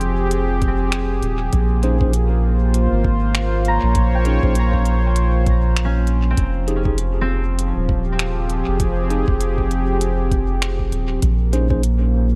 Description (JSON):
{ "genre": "ambient dub", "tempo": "99 BPM", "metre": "4/4", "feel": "swing 58% on 16ths", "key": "Bb dorian", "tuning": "A4 = 440 Hz", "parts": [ { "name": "warm analog pad", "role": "sustained chords", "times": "0.0-12.4 s", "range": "F3 to Db5", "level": "-26 LUFS", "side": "equal", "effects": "chorus, vintage 12-bit sampler grit" }, { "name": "concert harp", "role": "arpeggios", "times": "0.0-10.2 s", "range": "C4 to Bb5", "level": "-32 LUFS", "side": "equal", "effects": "low-pass filter, tape echo" }, { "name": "soft dub sub bass", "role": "bass", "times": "0.0-12.4 s", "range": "Eb1 to Bb1", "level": "-21 LUFS", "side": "equal", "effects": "none" }, { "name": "organic electronic drum kit", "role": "drums", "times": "0.0-12.0 s", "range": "finger snaps, hi-hat", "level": "-30 LUFS", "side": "equal", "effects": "dub echo" }, { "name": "electronic kick drum", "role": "drums", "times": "0.6-11.8 s", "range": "none", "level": "-23 LUFS", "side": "equal", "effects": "none" }, { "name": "mellow tine electric piano", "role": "stabs", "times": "1.8-11.8 s", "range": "Db4 to C5", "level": "-30 LUFS", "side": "equal", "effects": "dub echo" } ], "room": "light reverb, digital ambience", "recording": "none", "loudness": "-19 LUFS", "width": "mono", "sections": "0.0-12.4 A section", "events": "none", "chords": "0.0 Fm7; 1.5 Bbm9; 6.4 Fm7; 11.2 Bbm11", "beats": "0.32 0.92 | 1.53 2.13 2.74 3.35 | 3.95 4.56 5.16 5.77 | 6.38 6.98 7.59 8.19 | 8.80 9.41 10.01 10.62 | 11.22 11.83" }